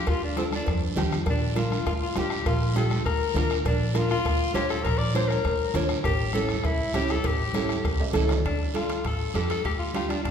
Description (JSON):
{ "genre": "latin, cumbia", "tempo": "201 BPM", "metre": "4/4", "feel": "straight", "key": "D harmonic minor", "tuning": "A4 = 437 Hz", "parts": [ { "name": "clear tenor saxophone", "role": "second line", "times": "0.0-10.3 s", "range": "C4 to D5", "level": "-29 LUFS", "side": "left 4 dB", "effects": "none" }, { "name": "upright bass", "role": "bass", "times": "0.1-10.3 s", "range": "A1 to F2", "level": "-28 LUFS", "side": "equal", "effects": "none" }, { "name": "bombo", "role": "percussion", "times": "0.1-10.3 s", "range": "none", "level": "-31 LUFS", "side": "left 1 dB", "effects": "none" }, { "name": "cowbell and timbales", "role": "percussion", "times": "0.1-10.3 s", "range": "none", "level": "-37 LUFS", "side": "right 4 dB", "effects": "none" }, { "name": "guiro", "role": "percussion", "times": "0.1-10.3 s", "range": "none", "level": "-39 LUFS", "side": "right 6 dB", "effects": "none" }, { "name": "nylon-string guitar", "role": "accompaniment", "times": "0.4-10.2 s", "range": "C#4 to C#5", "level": "-30 LUFS", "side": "right 2 dB", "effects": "none" }, { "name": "congas", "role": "percussion", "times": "0.4-10.2 s", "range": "none", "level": "-34 LUFS", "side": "equal", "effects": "none" } ], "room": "wet recital hall reverb, RT60 1.9 s", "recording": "recorded in a church or concert hall", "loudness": "-23 LUFS", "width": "side -8 dB against mid", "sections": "0.0-8.4 A section; 8.4-10.3 B section", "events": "tenor saxophone solo 0.0-8.4, 8.4-10.3; drum fill 8.0-8.4", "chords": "0.0 Dm; 1.3 Bb; 6.0 A7; 8.4 Dm" }